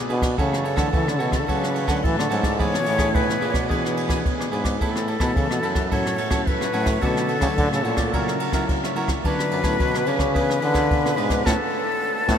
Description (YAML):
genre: samba and choro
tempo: 108 BPM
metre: 4/4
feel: straight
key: A major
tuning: A4 = 440 Hz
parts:
  - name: breathy concert flute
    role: second line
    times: 0.0-12.4 s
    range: G#4 to C#5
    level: -26 LUFS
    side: left 2 dB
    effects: none
  - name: cavaquinho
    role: accompaniment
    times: 0.0-12.4 s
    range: D4 to E5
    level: -29 LUFS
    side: right 4 dB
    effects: none
  - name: nylon-string guitar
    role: accompaniment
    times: 0.0-12.4 s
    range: F#2 to G#4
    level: -29 LUFS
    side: left 2 dB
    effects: none
  - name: breathy trombone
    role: melody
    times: 0.1-12.4 s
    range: F#2 to E3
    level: -25 LUFS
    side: equal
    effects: none
  - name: jazz brush drum kit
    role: drums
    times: 0.1-12.4 s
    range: kick drum, ride cymbal, rim click, snare drum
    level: -25 LUFS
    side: equal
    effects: none
room: wet huge ambient reverb, RT60 6.9 s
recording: in a vast, echoing space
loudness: -19 LUFS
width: side -8 dB against mid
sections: 0.0-12.4 A section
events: band accent 11.5-12.4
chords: 0.4 F#m7; 1.5 Dmaj7; 2.6 E7; 4.8 Asus2; 5.9 F#m7; 7.0 Dmaj7; 8.1 F#7; 9.2 Bmadd9; 10.4 E7; 11.5 Aadd9